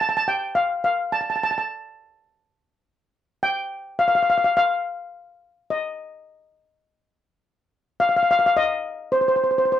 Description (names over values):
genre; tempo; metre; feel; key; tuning
calypso; 105 BPM; 4/4; straight; unclear; A4 = 440 Hz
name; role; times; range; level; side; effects
steel pan; solo; 0.0-9.8 s; C5 to A5; -19 LUFS; left 1 dB; none
room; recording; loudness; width
light reverb; dry, close 1970s-style studio recording; -19 LUFS; side -10 dB against mid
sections
0.0-8.0 A section; 8.0-9.8 A section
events
none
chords
none